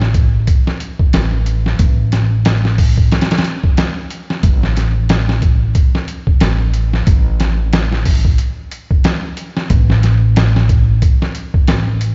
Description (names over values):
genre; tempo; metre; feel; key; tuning
trip hop; 91 BPM; 4/4; swing 58% on 16ths; unclear; A4 = 440 Hz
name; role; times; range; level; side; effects
upright bass; bass; 0.0-12.1 s; A1; -16 LUFS; equal; none
boom bap sampler-style drum kit; drums; 0.0-12.1 s; hi-hat, kick drum, snare drum; -16 LUFS; equal; none
room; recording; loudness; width
little or no reverb; played on a big sound system in a bare room, stone room reverb, vinyl crackle, nothing above 7.6 kHz; -14 LUFS; mono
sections
0.0-12.1 A section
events
none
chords
none